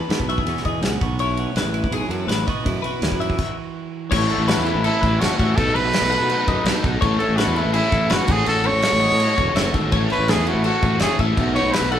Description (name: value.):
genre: math rock and midwest emo.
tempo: 165 BPM.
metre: 4/4.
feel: straight.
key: A lydian.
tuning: A4 = 440 Hz.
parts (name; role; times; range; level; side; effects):
twelve-string electric guitar; accompaniment; 0.0-4.8 s; F#2 to A4; -29 LUFS; right 7 dB; none.
twelve-string electric guitar; arpeggios; 0.0-12.0 s; G#4 to F#5; -27 LUFS; left 8 dB; none.
fuzz fingered electric bass; bass; 0.1-12.0 s; E1 to B2; -23 LUFS; equal; overdrive.
loose indie drum kit; drums; 0.1-12.0 s; crash cymbal, kick drum, ride cymbal, snare drum; -23 LUFS; equal; none.
overdriven electric guitar; riff; 4.1-12.0 s; A2 to A4; -25 LUFS; equal; none.
warm trumpet; melody; 4.3-12.0 s; E4 to C#5; -21 LUFS; equal; none.
room: moderate large studio reverb, RT60 0.9 s.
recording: band playing live in one room.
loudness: -17 LUFS.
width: side -10 dB against mid.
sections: 0.0-4.1 A section; 4.1-12.0 B section.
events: stop 3.4-4.1.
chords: 0.0 Emaj7; 1.0 B7sus4; 4.1 A6; 5.6 B7sus4; 7.0 A6; 8.3 F#m7/A; 9.9 A6; 11.4 B7sus4.